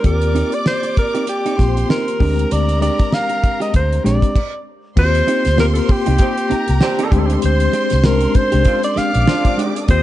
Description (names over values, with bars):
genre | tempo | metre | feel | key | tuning
lush 1970s-style soul | 98 BPM | 4/4 | swing 58% on 16ths | Eb major | A4 = 441 Hz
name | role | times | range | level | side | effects
warm alto saxophone | melody | 0.0-10.0 s | G4 to F5 | -20 LUFS | equal | none
mellow tine electric piano | accompaniment | 0.0-10.0 s | Ab3 to Bb4 | -22 LUFS | left 4 dB | medium stereo tremolo
vintage muted fingered electric bass | bass | 0.0-10.0 s | Bb1 to Eb2 | -17 LUFS | equal | none
damped 70s drum kit | drums | 0.0-10.0 s | crash cymbal, hi-hat, kick drum, snare drum | -18 LUFS | equal | none
warm studio violin section | second line | 0.1-10.0 s | Bb4 to Eb6 | -28 LUFS | right 1 dB | none
clean electric guitar | riff | 0.3-9.8 s | Ab3 to G4 | -24 LUFS | right 5 dB | none
warm horn section | stabs | 6.2-9.9 s | F3 to G4 | -23 LUFS | right 3 dB | none
room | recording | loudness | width
studio ambience | nothing above 10.4 kHz | -14 LUFS | side -14 dB against mid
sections
0.0-5.0 A section; 5.0-10.0 B section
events
stop 4.4-5.0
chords
0.0 Eb6; 2.2 Bb13/D; 5.0 Eb6; 7.1 Bb13